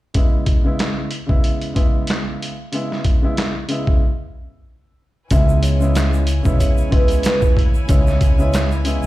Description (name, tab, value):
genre	hip hop, boom-bap hip-hop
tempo	93 BPM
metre	4/4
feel	swing 55% on 16ths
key	C# minor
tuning	A4 = 440 Hz
part	dark upright piano	accompaniment	0.1-9.1 s	C#3 to E4	-23 LUFS	equal	cassette tape
part	boom bap sampler-style drum kit	drums	0.1-9.0 s	handclaps, hi-hat, kick drum, snare drum	-17 LUFS	equal	none
part	vibraphone with soft mallets	melody	5.3-8.7 s	B4 to E5	-24 LUFS	right 2 dB	ping-pong delay
part	warm studio string section	sustained chords	5.3-9.1 s	E4 to G#5	-32 LUFS	left 1 dB	none
part	upright bass	bass	5.3-9.1 s	B1 to D2	-18 LUFS	equal	none
part	tube shaker	percussion	5.3-9.1 s	none	-40 LUFS	right 6 dB	none
room	little or no reverb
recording	played on a big sound system in a bare room, large studio reverb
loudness	-15 LUFS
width	side -16 dB against mid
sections	0.2-5.3 A section; 5.3-9.1 B section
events	break 4.0-5.3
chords	0.2 C#m7